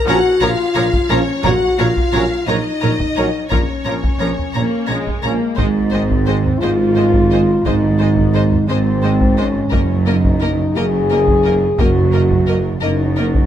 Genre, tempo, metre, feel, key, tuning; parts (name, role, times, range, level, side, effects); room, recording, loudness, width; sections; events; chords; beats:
cinematic, epic orchestral film score; 58 BPM (dotted quarters); 6/8; straight; A4 = 438 Hz
rich symphonic violin section; melody; 0.0-13.3 s; Db5 to Gb5; -27 LUFS; left 4 dB
mellow French horn section; sustained chords; 0.0-13.5 s; Ab3 to Ab4; -18 LUFS; left 3 dB
warm symphonic violin section; second line; 0.1-13.2 s; Bb4 to Bb5; -25 LUFS; left 2 dB
rich symphonic viola section; accompaniment; 0.1-13.3 s; F3 to Bb4; -25 LUFS; equal
clear trombone section; sustained chords; 0.1-5.4 s; F3 to Db4; -25 LUFS; right 5 dB
mellow tuba; bass; 0.1-13.5 s; Gb1 to Bb1; -22 LUFS; right 4 dB
rich chamber cello section; bass; 0.1-13.5 s; Gb2 to Bb2; -21 LUFS; right 3 dB
warm symphonic double bass section; bass; 0.1-13.5 s; Gb1 to Bb1; -22 LUFS; right 4 dB
taiko ensemble; drums; 0.9-13.5 s; -20 LUFS; equal
light reverb; close, detailed microphones; -13 LUFS; side -10 dB against mid
0.0-5.6 A section; 5.6-13.5 A section
0.0 Bbm; 1.5 Gb/Bb; 3.5 Bbm; 5.6 Ab; 9.7 Ebm/Gb
0.42 | 1.45 2.49 | 3.52 4.56 | 5.59 6.63 | 7.66 8.70 | 9.73 10.76 | 11.80 12.83